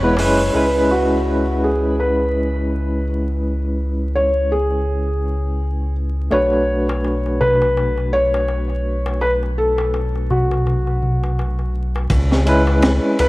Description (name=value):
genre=trip hop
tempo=83 BPM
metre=4/4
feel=swing 58% on 16ths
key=unclear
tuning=A4 = 439 Hz
part: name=felt-muted upright piano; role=melody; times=0.0-13.3 s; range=F#4 to C#5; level=-20 LUFS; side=equal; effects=dub echo
part: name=barky tine electric piano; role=accompaniment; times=0.0-13.3 s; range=G#3 to B4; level=-21 LUFS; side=equal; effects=tremolo, low-pass filter, tape echo
part: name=round analog bass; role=bass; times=0.0-13.3 s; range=E1 to C#2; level=-20 LUFS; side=equal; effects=none
part: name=darbuka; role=percussion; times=0.0-0.5, 6.3-13.2 s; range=none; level=-25 LUFS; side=left 1 dB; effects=none
part: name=backwards swelling texture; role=texture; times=0.0-0.6 s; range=B4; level=-34 LUFS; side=right 3 dB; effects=none
part: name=crunchy breakbeat drum kit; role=drums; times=0.2-0.4, 12.1-13.3 s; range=hi-hat, kick drum, ride cymbal, snare drum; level=-23 LUFS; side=equal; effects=none
room=light reverb, small room ambience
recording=vinyl crackle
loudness=-16 LUFS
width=side -20 dB against mid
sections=0.5-12.1 A section; 12.1-13.3 B section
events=filter sweep on tine electric piano 0.5-12.1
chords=0.0 E; 0.5 C#m7; 6.3 Bm7; 12.1 C#m7